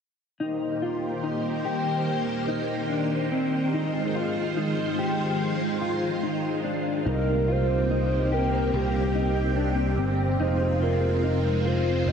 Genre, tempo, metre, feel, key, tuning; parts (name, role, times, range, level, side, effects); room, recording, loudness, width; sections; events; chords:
dream pop; 72 BPM; 4/4; straight; C minor; A4 = 440 Hz
string machine, full ensemble; sustained chords; 0.4-12.1 s; C3 to C5; -28 LUFS; right 1 dB; phaser, ensemble chorus
mellow electric guitar; arpeggios; 0.4-12.1 s; C4 to G4; -29 LUFS; left 3 dB; ensemble chorus, ping-pong delay
warbly nostalgic lead; melody; 7.1-12.1 s; G4 to Eb5; -29 LUFS; right 1 dB; chorus, ping-pong delay
picked electric bass; bass; 7.1-12.1 s; F1 to C2; -25 LUFS; right 1 dB
wet huge ambient reverb, RT60 8.0 s; dreamy mix soaked in reverb; -23 LUFS; side -7 dB against mid
0.4-7.1 A section; 7.1-12.1 B section
0.4 Cm7; 3.7 Fm7; 7.1 Cm7; 10.4 Fm7